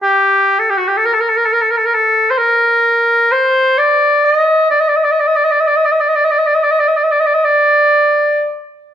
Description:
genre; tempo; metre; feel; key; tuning
arabic; 128 BPM (eighths); 10/8; straight; D maqam hijaz; A4 = 440 Hz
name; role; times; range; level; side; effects
warm oboe; solo; 0.0-8.5 s; F#4 to Eb5+33c; -10 LUFS; equal; none
room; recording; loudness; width
moderate recital hall reverb, RT60 1.3 s; none; -10 LUFS; side -9 dB against mid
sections
0.0-8.9 A section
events
none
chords
none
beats
| 0.02 0.49 0.96 1.43 1.90 2.37 2.83 3.30 3.77 4.24 | 4.71 5.18 5.65 6.12 6.58 7.05 7.52 7.99

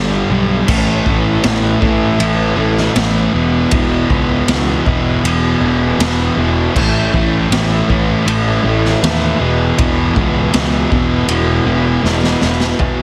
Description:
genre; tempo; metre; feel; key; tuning
quiet-loud alternative rock; 79 BPM; 4/4; straight; unclear; A4 = 440 Hz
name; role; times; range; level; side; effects
fuzz guitar; riff; 0.0-13.0 s; E2 to A3; -17 LUFS; equal; distortion
fuzz picked electric bass; bass; 0.0-13.0 s; E1 to D#2; -20 LUFS; equal; overdrive
raw garage drum kit; drums; 0.7-13.0 s; crash cymbal, kick drum, ride cymbal, snare drum, toms; -20 LUFS; equal; none
electric guitar through a small old amp; arpeggios; 12.8-13.0 s; E2; -25 LUFS; equal; none
room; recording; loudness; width
light reverb; heavily compressed radio sound, multiband compression; -14 LUFS; mono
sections
0.0-12.8 A section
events
drum fill 12.0-12.8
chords
0.0 G; 0.7 A5; 3.3 E5; 6.8 A5; 9.4 E5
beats
| 0.68 1.44 2.20 2.96 | 3.72 4.48 5.24 6.00 | 6.75 7.51 8.27 9.02 | 9.78 10.53 11.29 12.05 | 12.80

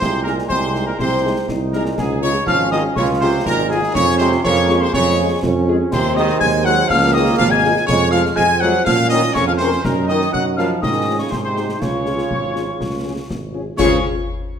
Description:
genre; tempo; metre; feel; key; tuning
military-style march for wind band; 122 BPM; 2/4; straight; Db major; A4 = 440 Hz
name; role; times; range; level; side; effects
mellow trumpet section; melody; 0.0-14.0 s; Ab4 to Ab5; -21 LUFS; equal; none
clear euphonium; second line; 0.0-14.0 s; Ab2 to Ab3; -23 LUFS; right 4 dB; none
mellow wooden piccolo; second line; 0.0-14.1 s; Ab5 to Ab6; -23 LUFS; left 4 dB; none
dark trombone section; sustained chords; 0.0-14.0 s; F3 to F4; -24 LUFS; right 2 dB; none
warm tuba; bass; 0.0-14.0 s; Ab1 to Bb2; -21 LUFS; right 2 dB; none
concert snare drum, clash cymbals and concert bass drum; drums; 0.0-14.1 s; none; -26 LUFS; left 2 dB; none
mellow French horn section; accompaniment; 0.3-14.0 s; Ab3 to Bb4; -24 LUFS; left 5 dB; none
room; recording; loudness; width
wet recital hall reverb, RT60 1.4 s; none; -15 LUFS; side -8 dB against mid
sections
0.0-13.8 A section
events
none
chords
0.0 Ab/C; 2.0 Db; 3.9 Db/F; 5.9 Ab7/Eb; 6.9 Db; 7.9 Dbadd11/F; 8.9 Bbm; 9.8 Ebm7/Gb; 10.8 Db/Ab; 11.3 Ab7; 11.8 Db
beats
| 0.01 0.50 | 0.99 1.48 | 1.98 2.47 | 2.96 3.45 | 3.94 4.44 | 4.93 5.42 | 5.91 6.41 | 6.90 7.39 | 7.88 8.37 | 8.87 9.36 | 9.85 10.34 | 10.83 11.32 | 11.81 12.31 | 12.80 13.29 | 13.78

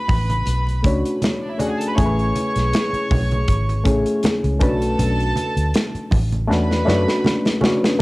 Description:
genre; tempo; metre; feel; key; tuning
lush 1970s-style soul; 80 BPM; 4/4; swing 54% on 16ths; A major; A4 = 440 Hz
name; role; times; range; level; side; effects
warm studio violin section; second line; 0.0-7.6 s; D4 to C#6; -26 LUFS; right 1 dB; none
reed electric piano; accompaniment; 0.0-8.0 s; A3 to C#5; -22 LUFS; left 1 dB; phaser
vintage muted fingered electric bass; bass; 0.1-7.1 s; G#1 to F#2; -20 LUFS; equal; none
modern studio drum kit; drums; 0.1-8.0 s; hi-hat, kick drum, snare drum; -21 LUFS; equal; cassette tape
congas; percussion; 0.1-8.0 s; none; -28 LUFS; right 2 dB; none
room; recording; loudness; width
light reverb; home recording on cassette; -17 LUFS; side -21 dB against mid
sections
0.0-8.0 A section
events
drum fill 6.5-8.0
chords
0.0 Bm9; 2.0 Amaj9; 4.6 Bm9; 6.5 E13sus4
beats
0.47 1.22 | 1.98 2.73 3.48 4.24 | 4.99 5.74 6.50 7.25 | 8.00

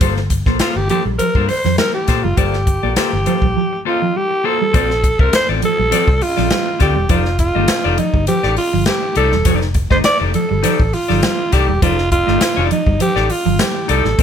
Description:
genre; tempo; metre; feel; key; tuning
funk; 102 BPM; 4/4; straight; unclear; A4 = 440 Hz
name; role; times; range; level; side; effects
semi-hollow electric guitar; accompaniment; 0.0-14.2 s; Bb3 to E5; -22 LUFS; left 8 dB; none
mellow electric guitar; riff; 0.0-14.2 s; F3 to C4; -21 LUFS; right 4 dB; ensemble chorus
vintage muted fingered electric bass; bass; 0.0-14.2 s; E1 to Bb2; -19 LUFS; equal; none
swinging big-band drum kit; drums; 0.0-14.2 s; hi-hat, kick drum, snare drum; -19 LUFS; equal; none
cowbell; percussion; 0.0-14.2 s; none; -28 LUFS; left 1 dB; none
breathy alto saxophone; melody; 0.6-14.2 s; Eb4 to D5; -18 LUFS; right 1 dB; none
room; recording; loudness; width
light reverb; none; -13 LUFS; side -8 dB against mid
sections
0.0-4.7 A section; 4.7-14.2 B section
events
none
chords
0.0 Gm11; 4.7 Bbmaj9; 7.1 F13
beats
| 0.01 0.60 1.20 1.79 | 2.38 2.97 3.56 4.15 | 4.74 5.33 5.92 6.51 | 7.10 7.69 8.28 8.87 | 9.46 10.05 10.64 11.23 | 11.82 12.41 13.00 13.60 | 14.19

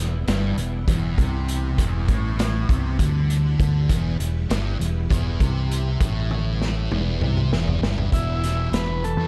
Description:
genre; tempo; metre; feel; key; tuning
psychedelic rock; 199 BPM (eighths); 7/8; straight; E minor; A4 = 440 Hz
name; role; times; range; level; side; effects
string machine, violins; sustained chords; 0.0-9.3 s; E3 to E4; -37 LUFS; equal; ensemble chorus
thick fuzz guitar; riff; 0.0-9.3 s; E2 to E3; -28 LUFS; equal; distortion, phaser, tape echo
fingered electric bass; bass; 0.0-9.3 s; E1 to E2; -27 LUFS; equal; none
vintage drum kit; drums; 0.3-9.2 s; hi-hat, kick drum, snare drum, toms; -27 LUFS; equal; none
overdriven combo organ; melody; 8.1-9.3 s; E4 to B4; -30 LUFS; equal; tape echo
room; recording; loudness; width
studio reverb; echo-heavy mix; -22 LUFS; mono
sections
0.0-8.1 A section; 8.1-9.3 B section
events
drum fill 6.3-8.1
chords
0.0 Em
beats
0.28 0.58 0.88 1.18 1.48 | 1.78 2.08 2.39 2.69 2.99 3.29 3.59 | 3.90 4.20 4.50 4.80 5.10 5.40 5.71 | 6.01 6.31 6.61 6.91 7.22 7.52 7.82 | 8.12 8.43 8.73 9.03

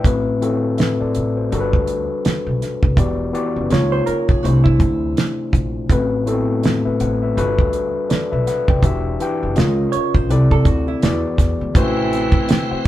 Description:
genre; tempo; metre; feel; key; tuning
R&B, neo-soul; 82 BPM; 4/4; swing 60% on 16ths; A dorian; A4 = 440 Hz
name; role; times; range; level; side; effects
overdriven tine electric piano; accompaniment; 0.0-12.9 s; A2 to G5; -20 LUFS; left 2 dB; none
upright bass; bass; 0.0-12.7 s; E1 to E2; -21 LUFS; equal; none
damped 70s drum kit; drums; 0.0-12.9 s; hi-hat, kick drum, snare drum; -17 LUFS; right 1 dB; none
hollow-body jazz guitar; second line; 3.9-11.2 s; E4 to C#5; -24 LUFS; right 5 dB; slapback echo
tonewheel organ; sustained chords; 11.8-12.9 s; C3 to F#4; -26 LUFS; right 2 dB; slow rotary speaker, chorus vibrato
clear horn section; stabs; 11.8-12.8 s; E3 to E4; -24 LUFS; right 2 dB; none
room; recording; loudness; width
moderate studio reverb, RT60 0.6 s; band playing live in one room; -15 LUFS; side -14 dB against mid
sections
0.0-11.8 A section; 11.8-12.9 B section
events
none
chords
0.0 Am69; 1.5 Gmaj9; 3.0 Em9; 3.7 C#69; 4.4 C69; 5.9 Am69; 7.4 Gmaj9; 8.8 Em9; 9.6 C#69; 10.3 C69; 11.0 E7; 11.8 Am69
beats
| 0.04 0.77 1.51 2.24 | 2.97 3.70 4.43 5.16 | 5.90 6.63 7.36 8.09 | 8.82 9.55 10.29 11.02 | 11.75 12.48

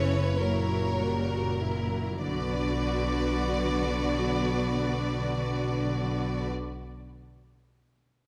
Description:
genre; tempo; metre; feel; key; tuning
classical, slow romantic movement for string orchestra; 30-39 BPM (dotted quarters); 6/8; rubato; B minor; A4 = 441 Hz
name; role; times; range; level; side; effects
rich studio violin section; melody; 0.0-6.5 s; A#4 to D5; -36 LUFS; equal; none
rich studio violin section; second line; 0.0-6.5 s; F#4 to C#5; -38 LUFS; equal; none
rich studio viola section; accompaniment; 0.0-6.5 s; F#3 to F#4; -36 LUFS; equal; none
rich studio cello section; bass; 0.0-6.5 s; A#2 to D3; -36 LUFS; equal; none
rich studio double bass section; bass; 0.0-6.5 s; F#1 to B1; -34 LUFS; equal; none
room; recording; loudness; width
moderate scoring stage reverb, RT60 1.9 s; none; -29 LUFS; mono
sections
0.0-2.2 A section; 2.2-5.8 B section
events
slowing down 0.0-2.2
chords
0.4 F#7b9; 2.2 Bm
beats
0.41 | 2.23 4.04

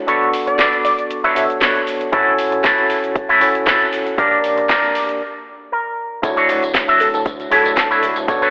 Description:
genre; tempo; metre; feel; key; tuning
nu-disco, nu disco; 117 BPM; 4/4; swing 54% on 16ths; D major; A4 = 440 Hz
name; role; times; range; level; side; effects
tine electric piano; accompaniment; 0.0-8.5 s; A3 to C#6; -22 LUFS; equal; medium tremolo, low-pass filter, analog delay
electric guitar with an envelope filter; riff; 0.1-8.5 s; D4 to E5; -19 LUFS; equal; analog chorus, low-pass filter
house drum kit; drums; 0.1-8.5 s; cabasa, hi-hat, snare drum; -23 LUFS; equal; none
unison lead; melody; 0.5-1.4, 7.0-8.0 s; A4 to E5; -24 LUFS; equal; analog chorus, cassette tape, analog delay
electronic kick drum; drums; 2.1-8.4 s; none; -23 LUFS; equal; none
chorused synth bass; bass; 6.2-8.4 s; D1 to D2; -31 LUFS; equal; tube saturation, sidechain pumping
tambourine; percussion; 6.2-8.5 s; none; -36 LUFS; equal; none
room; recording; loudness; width
wet echo chamber reverb, RT60 1.7 s, digital ambience; dry, gritty hardware recording, telephone sound; -16 LUFS; mono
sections
0.0-6.2 A section; 6.2-8.5 B section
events
build-up 0.0-6.2; filter sweep on clean electric guitar 0.0-6.2; filter sweep on tine electric piano 0.0-6.2; break 5.2-6.2; clean electric guitar fill 5.5-6.2; drop 6.2-8.5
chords
0.1 Bm9; 2.1 F#m7; 4.2 Gm; 6.2 Dmaj9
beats
| 0.08 0.59 1.10 1.62 | 2.13 2.64 3.15 3.67 | 4.18 4.69 5.21 5.72 | 6.23 6.75 7.26 7.77 | 8.28

